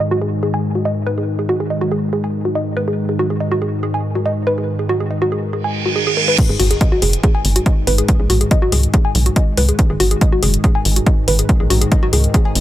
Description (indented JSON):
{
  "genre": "driving peak-time techno",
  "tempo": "141 BPM",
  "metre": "4/4",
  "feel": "straight",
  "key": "unclear",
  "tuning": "A4 = 438 Hz",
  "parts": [
    { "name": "woody wave-folded pluck", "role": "riff", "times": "0.0-12.5 s", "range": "F#4 to G#5", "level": "-20 LUFS", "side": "equal", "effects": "chorus, tube saturation, cassette tape, sidechain pumping, dub echo" },
    { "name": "analog drone", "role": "drone", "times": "0.0-12.6 s", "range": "G#2 to D#3", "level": "-21 LUFS", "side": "equal", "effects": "chorus, sidechain pumping" },
    { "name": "reverse cymbal and sub drop", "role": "sound effects", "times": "5.7-8.1 s", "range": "none", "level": "-20 LUFS", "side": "right 5 dB", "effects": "none" },
    { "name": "electronic kick drum", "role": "drums", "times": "6.4-12.4 s", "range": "none", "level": "-14 LUFS", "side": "equal", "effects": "none" },
    { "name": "punchy analog drum machine", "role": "drums", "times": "6.4-12.6 s", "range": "crash cymbal, hi-hat", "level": "-21 LUFS", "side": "left 3 dB", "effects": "sidechain pumping on hats, sidechain pumping on cymbals" },
    { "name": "tight sequencer bass", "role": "bass", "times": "6.5-12.6 s", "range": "F#1 to C#2", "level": "-16 LUFS", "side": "equal", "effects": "sidechain pumping" }
  ],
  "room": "digital ambience",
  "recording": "none",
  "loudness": "-14 LUFS",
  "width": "side -13 dB against mid",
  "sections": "0.0-6.4 A section; 6.4-12.6 B section",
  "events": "filter sweep on synth arpeggio sound 0.0-6.4; reverse cymbal 5.7-6.4; drop 6.4-12.6; impact 6.4-8.1",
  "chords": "0.0 G#5",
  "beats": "0.00 0.43 0.85 | 1.28 1.70 2.13 2.55 | 2.98 3.40 3.83 4.26 | 4.68 5.11 5.53 5.96 | 6.38 6.81 7.24 7.66 | 8.09 8.51 8.94 9.36 | 9.79 10.21 10.64 11.06 | 11.49 11.92 12.34"
}